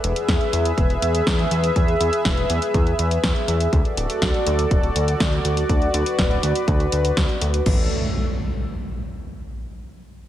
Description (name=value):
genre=italo disco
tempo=122 BPM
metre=4/4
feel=straight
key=unclear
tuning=A4 = 443 Hz
part: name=warm analog pad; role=sustained chords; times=0.0-7.9 s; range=A3 to E6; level=-23 LUFS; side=equal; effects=chorus
part: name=fat analog bass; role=bass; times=0.0-7.9 s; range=D1 to E2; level=-23 LUFS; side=equal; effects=none
part: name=house drum kit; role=drums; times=0.0-7.8 s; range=crash cymbal, hi-hat, snare drum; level=-26 LUFS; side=equal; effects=gated reverb
part: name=electronic kick drum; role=drums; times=0.3-7.8 s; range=none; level=-21 LUFS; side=equal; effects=none
part: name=impact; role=sound effects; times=7.7-9.6 s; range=none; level=-26 LUFS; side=equal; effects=none
room=light reverb, digital ambience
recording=none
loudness=-18 LUFS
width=side -12 dB against mid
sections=0.0-7.7 A section; 7.7-9.6 B section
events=none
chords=0.0 E; 3.7 D; 7.7 A